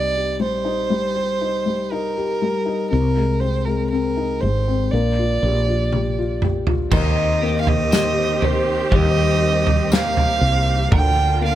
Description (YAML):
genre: pop ballad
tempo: 60 BPM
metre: 4/4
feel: straight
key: Eb major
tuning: A4 = 440 Hz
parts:
  - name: dark violin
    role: melody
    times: 0.0-11.6 s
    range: Bb4 to G5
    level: -22 LUFS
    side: right 3 dB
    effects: none
  - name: felt-muted upright piano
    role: accompaniment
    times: 0.0-11.6 s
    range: C3 to Bb4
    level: -24 LUFS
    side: left 6 dB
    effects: none
  - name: woody fretless electric bass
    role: bass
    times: 0.0-11.6 s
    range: Ab1 to Eb2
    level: -22 LUFS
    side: equal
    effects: none
  - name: loose indie drum kit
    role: drums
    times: 5.9-11.2 s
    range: crash cymbal, kick drum, snare drum, toms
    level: -20 LUFS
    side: right 1 dB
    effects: none
  - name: warm studio string section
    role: sustained chords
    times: 6.9-11.6 s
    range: D3 to G4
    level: -26 LUFS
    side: right 2 dB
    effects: none
  - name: twelve-string electric guitar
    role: arpeggios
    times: 6.9-11.6 s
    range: D3 to C5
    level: -28 LUFS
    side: left 2 dB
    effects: lush chorus
  - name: tambourine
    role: percussion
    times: 7.9-10.2 s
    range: none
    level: -32 LUFS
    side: left 8 dB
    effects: none
room: small room reverb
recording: none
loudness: -17 LUFS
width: side -12 dB against mid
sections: 0.0-6.9 A section; 6.9-11.6 B section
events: drum fill 5.9-6.9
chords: 0.0 Cm7; 2.9 Ab/C; 4.9 Bb6; 6.9 Eb6; 10.9 Bb/D